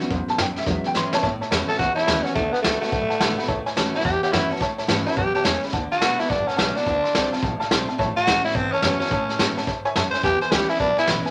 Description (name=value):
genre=rockabilly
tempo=213 BPM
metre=4/4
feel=swing 63% on 8ths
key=A major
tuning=A4 = 438 Hz
part: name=dark upright piano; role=accompaniment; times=0.0-11.3 s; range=F#3 to C6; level=-30 LUFS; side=equal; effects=none
part: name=picked steel-string acoustic guitar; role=accompaniment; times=0.0-11.3 s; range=E2 to F#4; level=-31 LUFS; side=equal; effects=none
part: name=upright bass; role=bass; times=0.0-11.3 s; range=F#1 to C#3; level=-34 LUFS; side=equal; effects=none
part: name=vintage brush drum kit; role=drums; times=0.0-11.3 s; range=hi-hat, kick drum, snare drum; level=-27 LUFS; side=equal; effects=none
part: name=growling tenor saxophone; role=melody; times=1.7-11.1 s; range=A3 to C5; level=-24 LUFS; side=equal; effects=none
room=moderate club reverb, RT60 0.6 s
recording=none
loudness=-22 LUFS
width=mono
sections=0.0-1.2 A section; 1.2-11.3 B section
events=upright piano solo 0.0-1.2; drum fill 0.9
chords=0.0 A6; 0.7 E6; 1.2 A6; 2.4 D6; 3.5 A6; 5.7 D6; 6.9 Dm7; 8.0 A6; 10.2 E6